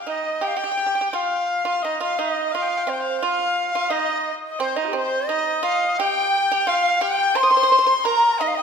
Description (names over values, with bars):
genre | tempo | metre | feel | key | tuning
chinese traditional, Chinese chamber ensemble | 86 BPM | 4/4 | straight | unclear | A4 = 444 Hz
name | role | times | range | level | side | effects
clear erhu | second line | 0.0-8.6 s | Eb4 to Eb6 | -24 LUFS | left 5 dB | none
bright reedy large dizi | melody | 0.1-8.6 s | C5 to C6 | -21 LUFS | equal | none
pipa | second line | 0.1-8.6 s | C4 to C5 | -25 LUFS | right 6 dB | none
room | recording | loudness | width
wet scoring stage reverb, RT60 1.7 s | none | -18 LUFS | side -6 dB against mid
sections
0.4-8.6 A section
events
none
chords
none